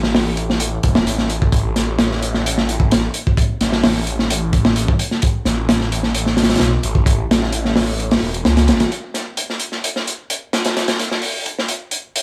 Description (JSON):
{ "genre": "breakbeat, breaks", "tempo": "130 BPM", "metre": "4/4", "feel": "straight", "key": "unclear", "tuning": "A4 = 440 Hz", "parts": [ { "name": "phased detuned saw bass", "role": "bass", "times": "0.0-8.8 s", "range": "E1 to C#2", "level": "-23 LUFS", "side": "equal", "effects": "phaser, tube saturation" }, { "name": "crunchy breakbeat drum kit", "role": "drums", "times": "0.0-12.2 s", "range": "hi-hat, kick drum, snare drum", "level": "-19 LUFS", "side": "equal", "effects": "high-pass filter on kick, high-pass filter on hats, high-pass filter on snare, high-pass filter on room" } ], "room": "little or no reverb", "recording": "none", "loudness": "-18 LUFS", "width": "mono", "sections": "0.0-8.9 A section; 8.9-12.2 B section", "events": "kick drops out 8.0-8.9", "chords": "none" }